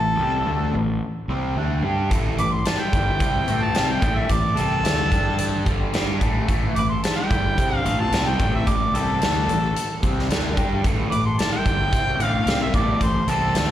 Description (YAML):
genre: blues rock power trio and southern rock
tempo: 110 BPM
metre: 4/4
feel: straight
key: A minor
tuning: A4 = 440 Hz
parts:
  - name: warm harmonica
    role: melody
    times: 0.0-13.7 s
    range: A4 to D6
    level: -24 LUFS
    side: left 1 dB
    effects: overdrive, slapback echo
  - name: lightly driven lead guitar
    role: second line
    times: 0.0-13.7 s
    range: E3 to B4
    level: -33 LUFS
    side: right 4 dB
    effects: slapback echo
  - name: cranked stack guitar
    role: riff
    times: 0.0-13.7 s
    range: G2 to G4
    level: -26 LUFS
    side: equal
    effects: overdrive, phaser, slapback echo
  - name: fuzz fingered electric bass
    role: bass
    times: 0.0-13.7 s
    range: G1 to G2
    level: -25 LUFS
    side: equal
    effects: overdrive
  - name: huge arena drum kit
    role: drums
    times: 2.1-13.7 s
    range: hi-hat, kick drum, snare drum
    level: -24 LUFS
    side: equal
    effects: none
room: light reverb, small room ambience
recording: live gig heard through the venue's PA, recital hall reverb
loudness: -19 LUFS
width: side -12 dB against mid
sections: 0.0-13.7 A section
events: none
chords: 0.0 Am; 5.1 G5; 5.7 Am